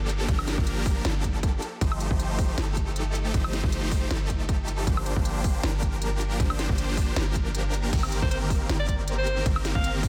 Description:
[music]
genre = future bass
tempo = 157 BPM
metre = 4/4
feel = swing 54% on 16ths, half-time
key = unclear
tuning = A4 = 440 Hz
[part]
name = supersaw chords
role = riff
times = 0.0-10.1 s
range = Eb3 to C5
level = -33 LUFS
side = equal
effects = phaser, sidechain pumping, digital delay
[part]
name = warm 808-style bass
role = bass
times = 0.0-10.1 s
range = G1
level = -31 LUFS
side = equal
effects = sidechain pumping
[part]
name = trap drum kit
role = drums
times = 0.1-10.1 s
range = crash cymbal, hi-hat, ride cymbal, snare drum, woodblock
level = -37 LUFS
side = equal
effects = studio reverb
[part]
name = electronic kick drum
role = drums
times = 0.3-10.1 s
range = none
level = -29 LUFS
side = equal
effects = studio reverb
[part]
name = edgy alto saxophone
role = melody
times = 8.2-9.9 s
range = C5 to F5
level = -34 LUFS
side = equal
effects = sidechain pumping
[sound]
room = light reverb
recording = dense, heavily limited modern master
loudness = -26 LUFS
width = mono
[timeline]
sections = 0.0-10.1 A section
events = kick drops out 7.5-7.9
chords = 0.0 Gm7; 1.6 F9/G; 4.9 Bb69/G; 7.9 Eb6/G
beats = | 0.28 0.67 1.05 1.43 | 1.81 2.19 2.58 2.96 | 3.34 3.72 4.11 4.49 | 4.87 5.25 5.63 6.02 | 6.40 6.78 7.16 7.55 | 7.93 8.31 8.69 9.07 | 9.46 9.84

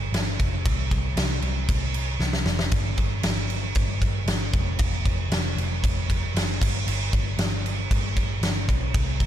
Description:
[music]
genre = hard rock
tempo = 116 BPM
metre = 4/4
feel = straight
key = unclear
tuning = A4 = 440 Hz
[part]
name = vintage muted picked electric bass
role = bass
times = 0.0-9.3 s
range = F1 to C2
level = -26 LUFS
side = equal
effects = none
[part]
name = huge arena drum kit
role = drums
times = 0.1-9.3 s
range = crash cymbal, kick drum, snare drum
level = -24 LUFS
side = equal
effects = none
[sound]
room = little or no reverb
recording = none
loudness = -22 LUFS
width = side -11 dB against mid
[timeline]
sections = 0.0-9.3 A section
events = drum fill 2.2-2.7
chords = none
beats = 0.13 | 0.65 1.17 1.69 2.21 | 2.73 3.24 3.76 4.28 | 4.80 5.32 5.84 6.35 | 6.87 7.39 7.91 8.43 | 8.94

